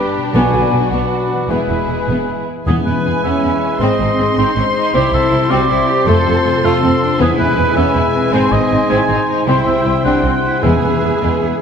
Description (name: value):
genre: cinematic, heroic adventure film score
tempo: 105 BPM (dotted quarters)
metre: 6/8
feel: straight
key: unclear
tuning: A4 = 441 Hz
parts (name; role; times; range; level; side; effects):
- warm symphonic violin section; melody; 0.0-11.6 s; F#4 to B#5; -25 LUFS; left 2 dB; none
- mellow clarinet; second line; 0.0-2.5 s; F#4 to G#4; -28 LUFS; left 1 dB; none
- warm oboe; second line; 0.0-11.6 s; G4 to G#5; -20 LUFS; right 1 dB; none
- warm symphonic violin section; second line; 0.0-11.5 s; G3 to G#4; -26 LUFS; left 2 dB; none
- mellow French horn section; sustained chords; 0.0-11.6 s; F#3 to G#4; -23 LUFS; left 4 dB; none
- concert harp; arpeggios; 0.0-11.6 s; E2 to B5; -22 LUFS; left 7 dB; none
- dark trumpet section; stabs; 0.0-11.6 s; A4 to B#4; -22 LUFS; right 1 dB; none
- bright large flute ensemble; second line; 0.3-2.5 s; E5 to G#5; -23 LUFS; equal; none
- warm symphonic viola section; accompaniment; 0.3-11.5 s; D3 to B#3; -22 LUFS; equal; none
- rich studio cello section; bass; 0.3-11.5 s; E2 to A4; -20 LUFS; right 2 dB; none
- warm symphonic double bass section; bass; 0.3-11.5 s; E1 to F2; -20 LUFS; right 3 dB; none
- timpani; percussion; 0.3-3.2, 7.2-7.7, 10.6-11.2 s; E2 to B2; -22 LUFS; left 1 dB; none
room: wet scoring stage reverb, RT60 2.0 s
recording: none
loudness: -12 LUFS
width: side -7 dB against mid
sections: 0.0-2.7 A section; 2.7-11.6 B section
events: none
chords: 0.3 Bm; 1.5 E; 3.8 G#; 4.9 C; 6.1 F; 7.2 E; 8.3 G#; 9.5 C; 10.6 E